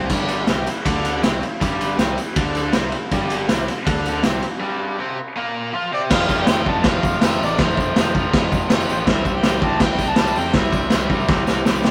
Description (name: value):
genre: garage rock duo or trio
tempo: 161 BPM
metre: 4/4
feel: straight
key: unclear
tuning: A4 = 440 Hz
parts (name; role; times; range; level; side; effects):
- overdriven electric guitar; riff; 0.0-11.9 s; F2 to F4; -26 LUFS; equal; none
- fuzz picked electric bass; bass; 0.0-11.9 s; F1 to F2; -30 LUFS; equal; overdrive
- vintage drum kit; drums; 0.1-11.9 s; crash cymbal, kick drum, ride cymbal, snare drum; -21 LUFS; equal; none
- tambourine; percussion; 0.1-11.9 s; none; -43 LUFS; equal; none
- warm harmonica; melody; 5.9-11.9 s; C5 to A5; -27 LUFS; equal; overdrive
room: light reverb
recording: rough rehearsal-room recording, warm saturation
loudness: -19 LUFS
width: mono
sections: 0.0-6.1 A section; 6.1-11.9 B section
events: break 4.6-6.1; drum fill 11.3-11.9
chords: 0.0 G5; 6.1 F5; 9.1 C